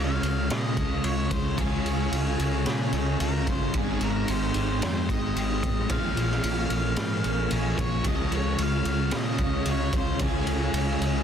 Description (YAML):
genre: rock, shoegaze and dream pop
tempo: 111 BPM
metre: 4/4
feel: straight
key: Db lydian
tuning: A4 = 440 Hz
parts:
  - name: octave-fuzz lead guitar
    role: melody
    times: 0.0-11.2 s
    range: Ab4 to F5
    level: -34 LUFS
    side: left 1 dB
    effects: distortion, tape echo
  - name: glassy FM pad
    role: sustained chords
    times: 0.2-11.2 s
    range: Bb4 to Eb6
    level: -38 LUFS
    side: right 1 dB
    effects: ensemble chorus, built-in reverb
  - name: electric guitar through a small old amp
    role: arpeggios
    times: 0.0-11.2 s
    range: Eb3 to G4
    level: -38 LUFS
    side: right 1 dB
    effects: ensemble chorus, tape echo
  - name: crunchy overdriven guitar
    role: riff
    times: 0.0-11.2 s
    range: Ab2 to F4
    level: -32 LUFS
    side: right 10 dB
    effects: reverse reverb
  - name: thick fuzz guitar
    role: riff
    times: 0.0-11.2 s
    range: Ab2 to Db4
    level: -30 LUFS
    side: left 8 dB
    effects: distortion, ensemble chorus
  - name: growling fingered electric bass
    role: bass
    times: 0.0-11.2 s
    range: G1 to Bb2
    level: -29 LUFS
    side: equal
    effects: overdrive
  - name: raw garage drum kit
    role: drums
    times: 0.2-11.1 s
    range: kick drum, ride cymbal, snare drum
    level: -30 LUFS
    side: equal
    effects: none
room: moderate concert hall reverb, RT60 2.0 s, small room reverb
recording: dense, heavily limited modern master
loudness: -24 LUFS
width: side -8 dB against mid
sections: 0.0-11.2 A section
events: none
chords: 0.0 Db; 3.7 Abmaj7; 5.9 Bbm7; 8.0 Db